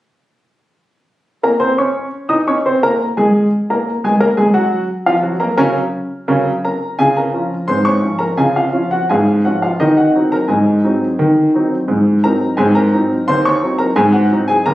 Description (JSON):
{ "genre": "ragtime piano", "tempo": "86 BPM", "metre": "2/4", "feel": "straight", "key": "Db major", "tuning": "A4 = 439 Hz", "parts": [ { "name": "clear upright piano", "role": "solo", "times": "1.4-14.7 s", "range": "Eb2 to Eb6", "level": "-12 LUFS", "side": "equal", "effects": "none" } ], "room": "light reverb", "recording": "recorded on a phone in the room, club reverb, compression", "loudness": "-12 LUFS", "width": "side -15 dB against mid", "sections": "1.4-7.0 A section; 7.0-14.7 B section", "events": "none", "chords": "1.4 Db5; 4.2 Gb; 7.0 Db; 9.8 Ab7" }